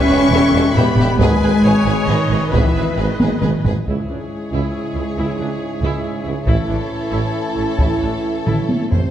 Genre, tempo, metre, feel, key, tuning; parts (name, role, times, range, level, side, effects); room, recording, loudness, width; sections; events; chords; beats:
cinematic, epic orchestral film score; 137 BPM; 3/4; straight; C# minor from 3.9 s; A4 = 442 Hz
warm symphonic violin section; melody; 0.0-9.1 s; B#4 to C#6; -27 LUFS; left 4 dB
rich chamber viola section; accompaniment; 0.0-9.0 s; D4 to C#5; -26 LUFS; equal
clear woodwind section; sustained chords; 0.0-8.9 s; G3 to E5; -28 LUFS; left 2 dB
mellow French horn section; sustained chords; 0.0-9.1 s; D#3 to E4; -22 LUFS; left 1 dB
warm trombone section; sustained chords; 0.0-9.1 s; G#2 to B3; -28 LUFS; right 2 dB
warm symphonic cello section; bass; 0.0-9.0 s; A2 to C#4; -23 LUFS; right 1 dB
warm symphonic violin section; second line; 0.1-9.1 s; G4 to E5; -28 LUFS; left 3 dB
clear tuba; bass; 0.1-9.0 s; E1 to C#2; -25 LUFS; right 3 dB
rich symphonic double bass section; bass; 0.1-9.0 s; E1 to C#2; -22 LUFS; right 2 dB
taiko ensemble; drums; 0.7-9.1 s; -19 LUFS; equal
moderate scoring stage reverb, RT60 1.6 s; -15 LUFS; side -10 dB against mid
0.0-3.9 A section; 3.9-9.1 B section
drum fill 3.2-3.9, 8.5-9.1
0.0 Em; 1.2 G#m; 3.9 C#m; 6.5 A
0.32 0.76 | 1.20 1.63 2.08 | 2.52 2.97 3.42 | 3.87 4.30 4.74 | 5.18 5.61 6.04 | 6.47 6.91 7.34 | 7.79 8.24 8.69